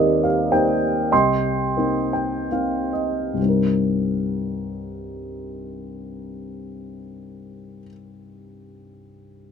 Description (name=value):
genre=classical, lyrical solo piano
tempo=60-110 BPM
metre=3/4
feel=rubato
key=C minor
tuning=A4 = 443 Hz
part: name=dark upright piano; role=solo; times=0.0-9.5 s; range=C2 to C6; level=-20 LUFS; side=equal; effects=none
room=moderate studio ambience, RT60 0.5 s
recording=none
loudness=-19 LUFS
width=side -7 dB against mid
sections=0.0-3.4 A section; 3.4-9.1 B section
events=slowing down 0.0-3.4; upright piano fill 1.8-3.4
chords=0.0 Cm7/Eb; 1.1 Cm7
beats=0.53 | 1.12 1.77 2.50 | 3.39 4.38 5.32 | 6.24 7.18 8.16